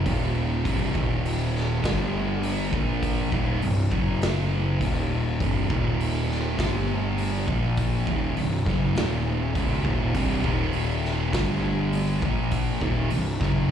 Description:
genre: stoner and doom metal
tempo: 101 BPM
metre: 4/4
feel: straight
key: unclear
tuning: A4 = 440 Hz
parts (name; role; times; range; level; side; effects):
- thick fuzz guitar; riff; 0.0-13.7 s; C2 to Bb3; -27 LUFS; left 5 dB; distortion, slapback echo
- thick fuzz guitar; riff; 0.0-13.7 s; C2 to Bb3; -29 LUFS; right 12 dB; distortion, slapback echo
- fuzz picked electric bass; bass; 0.1-13.7 s; C1 to Bb1; -28 LUFS; equal; overdrive
- raw garage drum kit; drums; 0.1-13.6 s; hi-hat, kick drum, snare drum; -29 LUFS; equal; none
room: little or no reverb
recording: live gig heard through the venue's PA, club reverb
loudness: -22 LUFS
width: side -9 dB against mid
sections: 0.0-13.7 A section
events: none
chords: 0.1 Eb5; 0.7 C5; 0.9 Eb5; 1.8 G5; 2.7 Bb5; 3.3 Cm; 3.9 F#5; 4.8 Eb5; 5.4 C5; 5.7 Eb5; 6.6 G5; 7.5 Bb5; 8.1 Cm; 9.0 Eb5; 9.6 Cm; 10.5 Eb5; 11.3 G5; 12.2 Bb5; 12.8 Cm

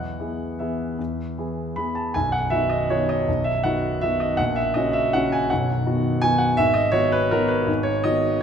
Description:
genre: classical, piano waltz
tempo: 147-174 BPM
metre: 3/4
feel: rubato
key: B major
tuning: A4 = 439 Hz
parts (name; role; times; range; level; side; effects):
- clear concert grand piano; solo; 0.0-8.4 s; B0 to B5; -20 LUFS; equal; none
room: moderate scoring stage reverb, RT60 1.9 s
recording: minimal, uncompressed stereo recording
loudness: -20 LUFS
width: side -7 dB against mid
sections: 0.0-2.1 A section; 2.1-8.4 B section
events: none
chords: 0.0 E; 2.1 B; 4.4 F#/A#; 5.5 B; 6.6 G#m7

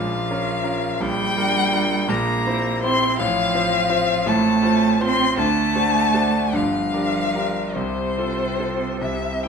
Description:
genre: classical, slow romantic movement for piano trio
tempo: 47-58 BPM (dotted quarters)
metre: 6/8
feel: rubato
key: F major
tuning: A4 = 440 Hz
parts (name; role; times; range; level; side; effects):
- warm violin; melody; 0.0-9.5 s; C5 to C6; -22 LUFS; left 5 dB; none
- rich cello; second line; 0.0-9.5 s; C3 to C4; -24 LUFS; right 6 dB; none
- bright concert grand piano; accompaniment; 0.0-9.5 s; G1 to C5; -23 LUFS; equal; none
room: wet recital hall reverb, RT60 1.3 s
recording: minimal, uncompressed stereo recording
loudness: -18 LUFS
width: side -6 dB against mid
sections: 0.0-9.5 A section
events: none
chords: 0.0 Bbm; 1.0 Gm7/Bb; 2.1 C7/Bb; 3.2 F/A; 5.4 D7; 6.5 Gm7; 7.8 F/C

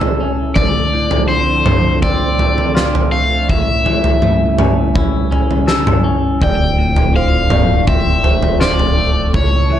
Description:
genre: post-rock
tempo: 82 BPM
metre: 4/4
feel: straight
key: D minor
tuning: A4 = 440 Hz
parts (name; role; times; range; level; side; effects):
- analog string pad; sustained chords; 0.0-9.8 s; C#3 to A4; -23 LUFS; equal; ensemble chorus
- clean electric guitar; arpeggios; 0.0-9.8 s; D2 to A4; -21 LUFS; left 2 dB; slapback echo
- huge arena drum kit; drums; 0.0-9.5 s; kick drum, snare drum, toms; -15 LUFS; right 1 dB; none
- cranked stack guitar; melody; 0.6-9.8 s; C5 to G5; -18 LUFS; left 2 dB; overdrive, slapback echo
- felt-muted upright piano; arpeggios; 6.4-9.8 s; C5 to E5; -24 LUFS; right 5 dB; slapback echo
- growling fingered electric bass; bass; 6.4-9.8 s; D1 to C#2; -17 LUFS; equal; overdrive
room: light reverb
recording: dark, warm production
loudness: -12 LUFS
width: side -10 dB against mid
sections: 0.0-9.8 A section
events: none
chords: 0.0 A7; 0.6 Dm7; 3.5 A7; 6.4 Dm7

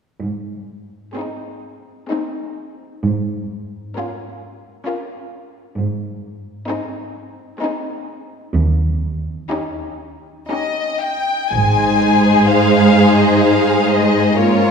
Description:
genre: classical, slow romantic movement for string orchestra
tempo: 57-68 BPM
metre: 3/4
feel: rubato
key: Ab major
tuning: A4 = 440 Hz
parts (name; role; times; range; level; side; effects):
- warm studio cello section; bass; 0.2-14.7 s; Eb2 to Ab2; -18 LUFS; right 1 dB; none
- rich studio violin section; melody; 1.1-14.7 s; G4 to Ab5; -20 LUFS; left 3 dB; none
- rich studio violin section; second line; 1.2-14.7 s; Eb4 to C5; -20 LUFS; left 1 dB; none
- rich studio viola section; accompaniment; 1.2-14.7 s; Ab3 to Eb4; -20 LUFS; right 1 dB; none
- warm studio double bass section; bass; 11.5-12.5 s; Ab1; -21 LUFS; right 2 dB; none
room: wet concert hall reverb, RT60 2.4 s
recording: heard from further back in the room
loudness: -14 LUFS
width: side -6 dB against mid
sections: 0.2-11.5 A section; 11.5-14.7 B section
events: none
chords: 0.2 Ab; 3.1 Bbm7/Ab; 5.8 Ab; 8.5 Eb7; 11.5 Ab

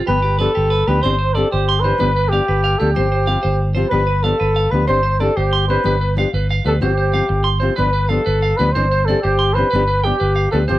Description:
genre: highlife guitar band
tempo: 124 BPM (dotted quarters)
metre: 12/8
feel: straight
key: G mixolydian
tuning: A4 = 442 Hz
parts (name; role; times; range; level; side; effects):
- clean electric guitar; arpeggios; 0.0-10.8 s; G4 to C6; -22 LUFS; right 5 dB; spring reverb, slapback echo
- trumpet with bucket mute; melody; 0.1-10.8 s; G4 to C5; -19 LUFS; equal; none
- fingerpicked steel-string acoustic guitar; accompaniment; 0.1-10.8 s; E3 to G4; -22 LUFS; left 4 dB; none
- fingered electric bass; bass; 0.1-10.8 s; G1 to D2; -18 LUFS; equal; none
room: light reverb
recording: dry, close 1970s-style studio recording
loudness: -14 LUFS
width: side -15 dB against mid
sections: 0.1-10.8 A section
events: none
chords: 0.1 G7; 1.0 Cadd9/G; 2.0 G7; 3.0 Fsus2/G; 3.9 G7; 4.9 Cadd9/G; 5.9 G7; 6.8 Fsus2/G; 7.8 G7; 8.7 Cadd9/G; 9.7 G7

